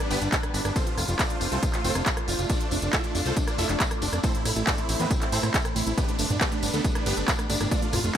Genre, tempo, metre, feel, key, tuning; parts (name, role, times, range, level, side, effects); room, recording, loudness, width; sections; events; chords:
uplifting trance; 138 BPM; 4/4; straight; A4 = 441 Hz
supersaw chords; melody; 0.0-8.2 s; A3 to E5; -30 LUFS; right 1 dB; phaser, cassette tape, sidechain pumping, digital delay
lush unison pad; sustained chords; 0.0-8.2 s; G3 to D5; -34 LUFS; equal; chorus, phaser, sidechain pumping
techno drum kit; drums; 0.0-8.2 s; handclaps, hi-hat, ride cymbal, rim click; -30 LUFS; right 1 dB
fat analog bass; bass; 0.1-8.1 s; F1 to E2; -28 LUFS; equal; sidechain pumping
tambourine; percussion; 0.1-8.2 s; -36 LUFS; left 2 dB
electronic kick drum; drums; 0.3-8.2 s; -27 LUFS; equal
wide unison pluck; arpeggios; 4.2-8.2 s; A2 to A3; -33 LUFS; right 4 dB; cassette tape, sidechain pumping, ping-pong delay
digital ambience; -23 LUFS; side -9 dB against mid
0.0-8.2 A section
0.0 G; 0.8 F6; 4.2 Am; 6.0 G